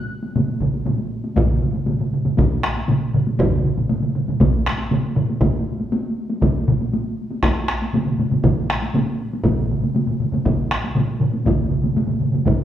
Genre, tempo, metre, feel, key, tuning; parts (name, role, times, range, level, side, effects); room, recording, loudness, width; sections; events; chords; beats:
japanese traditional, taiko drum ensemble; 119 BPM; 4/4; straight
taiko ensemble; percussion; 0.2-12.6 s; -24 LUFS; left 1 dB
solo taiko drums; percussion; 0.4-12.6 s; -22 LUFS; right 3 dB
taiko ensemble; percussion; 0.4-12.6 s; -24 LUFS; left 3 dB
taiko ensemble; percussion; 0.6-12.6 s; -22 LUFS; equal
wet large studio reverb, RT60 1.2 s; band playing live in one room; -18 LUFS; side -11 dB against mid
0.0-1.4 A section; 1.4-12.6 B section
0.36 0.86 | 1.37 1.88 2.38 2.89 | 3.39 3.90 4.41 4.91 | 5.42 5.92 6.42 6.93 | 7.43 7.94 8.44 8.94 | 9.45 9.95 10.45 10.95 | 11.46 11.96 12.46